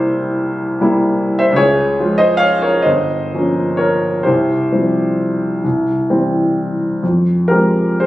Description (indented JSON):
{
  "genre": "classical, romantic nocturne for solo piano",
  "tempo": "39-52 BPM (dotted quarters)",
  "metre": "12/8",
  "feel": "rubato",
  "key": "unclear",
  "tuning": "A4 = 442 Hz",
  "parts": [
    { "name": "warm grand piano", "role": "solo", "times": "0.0-8.1 s", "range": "G1 to F5", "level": "-13 LUFS", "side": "equal", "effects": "none" }
  ],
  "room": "moderate large studio reverb, RT60 1.1 s",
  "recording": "recorded on a phone in the room, club reverb",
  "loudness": "-13 LUFS",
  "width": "side -15 dB against mid",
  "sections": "0.0-8.1 A section",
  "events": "none",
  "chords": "0.0 C7; 1.6 Db; 2.9 Gm7b5; 4.3 Csus4; 5.6 C; 7.0 Fm"
}